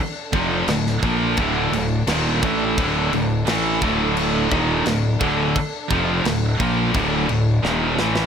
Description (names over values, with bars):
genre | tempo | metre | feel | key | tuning
heavy metal | 86 BPM | 4/4 | straight | D phrygian | A4 = 441 Hz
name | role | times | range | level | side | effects
muted studio string section | sustained chords | 0.0-8.3 s | D4 to A4 | -32 LUFS | equal | none
scooped high-gain guitar | riff | 0.3-8.3 s | D2 to Bb3 | -22 LUFS | left 7 dB | distortion
scooped high-gain guitar | riff | 0.3-8.3 s | D2 to Bb3 | -23 LUFS | right 10 dB | distortion
sludgy distorted guitar | riff | 0.3-8.3 s | D2 to Bb3 | -27 LUFS | equal | overdrive
fuzz fingered electric bass | bass | 0.3-8.3 s | D1 to Bb1 | -26 LUFS | right 1 dB | overdrive
tight metal drum kit | drums | 0.3-8.3 s | crash cymbal, kick drum, snare drum | -26 LUFS | equal | none
room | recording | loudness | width
little or no reverb | none | -18 LUFS | side -7 dB against mid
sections
0.0-8.3 A section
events
drum fill 7.6-8.3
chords
0.0 Dm